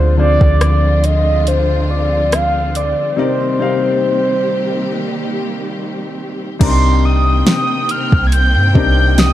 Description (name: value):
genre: contemporary R&B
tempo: 70 BPM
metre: 4/4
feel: swing 54% on 16ths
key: C minor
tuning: A4 = 441 Hz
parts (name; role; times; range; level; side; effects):
- mellow horn-like synth lead; melody; 0.0-9.3 s; C5 to Ab6; -17 LUFS; equal; chorus
- warm baby grand piano; accompaniment; 0.0-9.3 s; C3 to F5; -20 LUFS; left 6 dB; none
- warm symphonic string section; sustained chords; 0.0-9.3 s; C3 to G5; -22 LUFS; right 1 dB; none
- soft 808-style bass; bass; 0.0-9.3 s; C2 to G2; -14 LUFS; equal; none
- smooth R&B drum kit; drums; 0.4-9.3 s; crash cymbal, hi-hat, kick drum, rim click, snare drum; -14 LUFS; equal; overdrive
- large celesta; texture; 6.6-8.8 s; Bb5; -32 LUFS; right 9 dB; none
room: little or no reverb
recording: dark, warm production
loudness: -12 LUFS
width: side -13 dB against mid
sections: 0.0-6.6 A section; 6.6-9.3 B section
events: break 3.2-6.6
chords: 0.0 Dm7b5; 3.2 Cm7; 6.6 Cm9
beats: 0.61 1.46 2.32 | 3.18 4.03 4.89 5.75 | 6.61 7.46 8.32 9.18